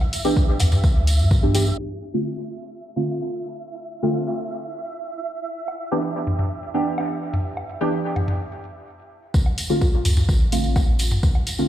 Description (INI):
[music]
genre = dub techno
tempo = 127 BPM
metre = 4/4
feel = straight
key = D dorian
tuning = A4 = 444 Hz
[part]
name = electronic woodblock and toms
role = percussion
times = 0.0-0.8, 5.7-11.4 s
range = none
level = -26 LUFS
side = equal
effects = sidechain pumping on perc, sidechain pumping on toms, dub echo
[part]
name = flickering grainy texture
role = texture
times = 0.0-9.4 s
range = E5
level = -34 LUFS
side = right 3 dB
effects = built-in reverb, sidechain pumping
[part]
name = electronic hi-hat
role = drums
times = 0.1-1.6, 9.6-11.6 s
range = none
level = -30 LUFS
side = left 2 dB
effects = none
[part]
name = tambourine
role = percussion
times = 0.1-1.8, 9.3-11.7 s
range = none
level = -31 LUFS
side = right 2 dB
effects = none
[part]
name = deep mellow chord stab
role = stabs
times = 0.2-11.7 s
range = D3 to G4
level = -24 LUFS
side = right 1 dB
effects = chorus, phaser, sidechain pumping, dub echo
[part]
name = electronic kick drum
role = drums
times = 0.4-1.4, 9.3-11.3 s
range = none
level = -19 LUFS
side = equal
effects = none
[part]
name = soft dub sub bass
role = bass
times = 0.6-1.7, 9.3-11.3 s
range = A1 to G2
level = -20 LUFS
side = equal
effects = tube saturation, sidechain pumping
[sound]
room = light reverb, digital ambience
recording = played on a big sound system in a bare room, stone room reverb, low-pass filter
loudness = -20 LUFS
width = side -12 dB against mid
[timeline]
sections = 0.0-1.8 A section; 1.8-9.3 B section; 9.3-11.7 A section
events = filter sweep 1.8-9.3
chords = 0.0 Em7; 1.8 Dm7; 5.6 Em7; 9.3 Dm7